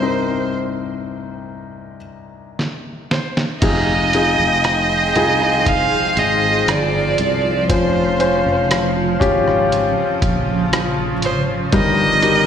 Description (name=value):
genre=pop ballad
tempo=59 BPM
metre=4/4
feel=straight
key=unclear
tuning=A4 = 441 Hz
part: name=rich violin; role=melody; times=0.0-12.5 s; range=C5 to F5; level=-19 LUFS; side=right 3 dB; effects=slapback echo, tape echo
part: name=warm concert grand piano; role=accompaniment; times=0.0-12.5 s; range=C2 to C5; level=-20 LUFS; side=left 3 dB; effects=slapback echo
part: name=lo-fi sampler-style drum kit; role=drums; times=2.6-12.5 s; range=crash cymbal, hi-hat, kick drum, rim click, snare drum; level=-21 LUFS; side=right 1 dB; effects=none
part: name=granular cloud pad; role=sustained chords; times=4.3-12.5 s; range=Db3 to G5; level=-21 LUFS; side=right 1 dB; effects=built-in reverb
part: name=sustaining fretless electric bass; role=bass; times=3.6-12.4 s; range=F1 to C2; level=-22 LUFS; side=right 1 dB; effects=none
part: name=nylon-string guitar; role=arpeggios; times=11.7-12.5 s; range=G2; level=-26 LUFS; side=right 2 dB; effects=none
room=light reverb, studio ambience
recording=live gig heard through the venue's PA, recital hall reverb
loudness=-15 LUFS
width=side -8 dB against mid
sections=0.0-3.6 A section; 3.6-12.5 B section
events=drum fill 2.6-3.6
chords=0.0 Cm7; 3.6 Fm7; 7.7 Dbmaj7/F; 11.7 Eb/G